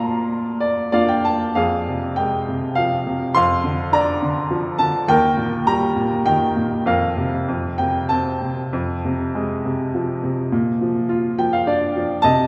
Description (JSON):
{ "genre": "classical, lyrical solo piano", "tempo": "93-106 BPM", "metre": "3/4", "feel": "rubato", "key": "Bb major", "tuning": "A4 = 440 Hz", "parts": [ { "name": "bright baby grand piano", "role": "solo", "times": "0.0-12.5 s", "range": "Eb2 to C6", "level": "-20 LUFS", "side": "equal", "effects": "none" } ], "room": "wet cathedral reverb, RT60 4.6 s", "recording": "recorded in a church or concert hall", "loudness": "-20 LUFS", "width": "mono", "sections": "0.0-1.6 A section; 1.6-12.5 B section", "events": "grand piano fill 0.3-1.6, 11.1-12.2", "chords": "0.0 Bb; 1.6 Fm; 3.4 Bb/F; 5.1 Eb; 6.9 Fsus4; 7.5 F5; 8.7 Fm; 10.5 Bb" }